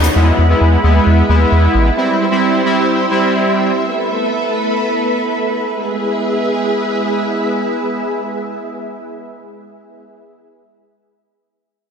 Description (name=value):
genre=pop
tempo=132 BPM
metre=4/4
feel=straight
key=E major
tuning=A4 = 437 Hz
part: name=analog synth brass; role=accompaniment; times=0.0-3.7 s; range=G3 to E4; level=-14 LUFS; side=right 1 dB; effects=chorus
part: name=string machine, cellos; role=sustained chords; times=0.0-10.0 s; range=F#4 to C6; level=-17 LUFS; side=equal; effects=ensemble chorus
part: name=round analog bass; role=bass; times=0.0-1.9 s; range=A1 to E2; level=-11 LUFS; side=equal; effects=none
room=wet lush hall reverb, RT60 1.8 s, small room ambience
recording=dense, heavily limited modern master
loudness=-13 LUFS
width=side -6 dB against mid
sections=0.0-5.6 A section; 5.6-9.2 B section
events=none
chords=0.2 E; 2.0 C; 3.8 Asus2; 5.6 E